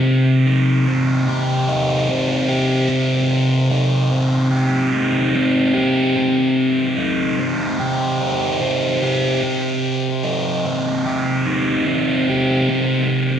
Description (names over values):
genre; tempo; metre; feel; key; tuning
rock; 74 BPM; 4/4; straight; C minor; A4 = 440 Hz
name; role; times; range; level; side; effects
thick fuzz guitar; solo; 0.0-13.4 s; C3 to G4; -16 LUFS; equal; distortion, phaser, analog delay
room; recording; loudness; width
light reverb; echo-heavy mix; -16 LUFS; side -9 dB against mid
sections
0.0-13.4 A section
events
none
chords
0.0 Cm